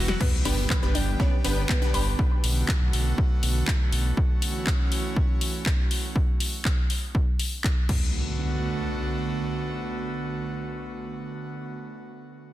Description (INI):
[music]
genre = progressive house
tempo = 121 BPM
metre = 4/4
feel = straight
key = B minor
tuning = A4 = 440 Hz
[part]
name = airy breathy pad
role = sustained chords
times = 0.0-11.7 s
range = D3 to G4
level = -32 LUFS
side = right 2 dB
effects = chorus, sidechain pumping
[part]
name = round analog bass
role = bass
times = 0.0-4.1 s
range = E1 to B1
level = -26 LUFS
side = equal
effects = sidechain pumping
[part]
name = analog pluck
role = arpeggios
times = 0.1-2.0 s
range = F#3 to B4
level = -33 LUFS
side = equal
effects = chorus, sidechain pumping, tape echo
[part]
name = house drum kit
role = drums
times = 0.1-8.0 s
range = crash cymbal, handclaps, hi-hat, snare drum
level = -31 LUFS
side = left 1 dB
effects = small room reverb
[part]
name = electronic kick drum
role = drums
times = 0.2-8.0 s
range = none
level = -24 LUFS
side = equal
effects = small room reverb
[part]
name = impact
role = sound effects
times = 0.2-2.2, 7.9-11.8 s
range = none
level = -34 LUFS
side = equal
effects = none
[part]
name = supersaw stab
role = stabs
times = 0.5-2.0 s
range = B3 to B4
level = -33 LUFS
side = left 2 dB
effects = sidechain pumping, tape echo
[sound]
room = light reverb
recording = dense, heavily limited modern master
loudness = -23 LUFS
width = side -14 dB against mid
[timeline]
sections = 0.2-8.1 A section; 8.1-12.1 B section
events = drum fill 0.0; impact 0.2-2.2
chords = 0.2 G; 2.2 Bm7; 4.2 F#m7; 6.2 N.C.; 7.9 Bm7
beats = | 0.20 0.70 1.20 1.69 | 2.19 2.68 3.18 3.68 | 4.17 4.67 5.16 5.66 | 6.16 6.65 7.15 7.64 | 8.14 8.63 9.13 9.63 | 10.12 10.62 11.11 11.61